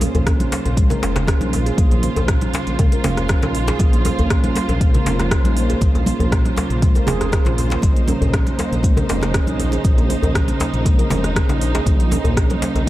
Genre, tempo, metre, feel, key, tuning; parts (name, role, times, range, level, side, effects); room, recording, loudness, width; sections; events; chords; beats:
afro house; 119 BPM; 4/4; straight; Bb minor; A4 = 440 Hz
dark symphonic string section; sustained chords; 0.0-12.9 s; Db3 to C5; -25 LUFS; right 1 dB; sidechain pumping
handpan; arpeggios; 0.0-12.9 s; Ab3 to Bb4; -25 LUFS; right 3 dB; sidechain pumping, digital delay
dark detuned saw bass; bass; 0.0-12.9 s; F1 to Bb1; -22 LUFS; equal; sidechain pumping
afro-pop drum kit; drums; 0.0-12.9 s; hi-hat, rim click; -27 LUFS; equal
congas; percussion; 0.0-12.9 s; -27 LUFS; right 1 dB
djembe; percussion; 0.0-12.9 s; -24 LUFS; left 1 dB
electronic kick drum; drums; 0.3-12.9 s; -17 LUFS; equal
light reverb, small room ambience; dark, warm production; -15 LUFS; side -15 dB against mid
0.0-12.9 A section
0.0 Bbmadd9
0.27 0.77 1.28 | 1.78 2.29 2.79 3.29 | 3.80 4.30 4.81 5.31 | 5.82 6.32 6.82 7.33 | 7.83 8.34 8.84 9.35 | 9.85 10.35 10.86 11.36 | 11.87 12.37 12.88